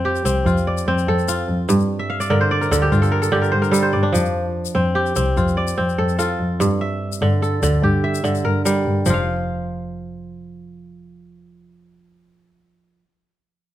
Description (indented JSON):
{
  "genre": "west african traditional, West African string and xylophone music",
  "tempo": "98 BPM (dotted quarters)",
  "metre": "12/8",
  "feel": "straight",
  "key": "unclear",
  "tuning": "A4 = 441 Hz",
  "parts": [
    { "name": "kora", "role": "arpeggios", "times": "0.0-13.1 s", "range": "G2 to F5", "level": "-20 LUFS", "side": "right 1 dB", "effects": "none" },
    { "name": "clear double bass", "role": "bass", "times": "0.0-12.3 s", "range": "F1 to G2", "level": "-21 LUFS", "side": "left 1 dB", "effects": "none" },
    { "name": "tube shaker", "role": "percussion", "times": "0.2-9.2 s", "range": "none", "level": "-30 LUFS", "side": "left 12 dB", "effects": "none" }
  ],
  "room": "light reverb",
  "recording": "close, detailed microphones",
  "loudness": "-17 LUFS",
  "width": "side -13 dB against mid",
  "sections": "0.0-9.1 A section; 9.1-11.5 B section",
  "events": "kora fill 2.0-4.1",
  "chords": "0.0 F; 1.7 G5; 4.1 F; 6.6 Gm; 9.1 N.C."
}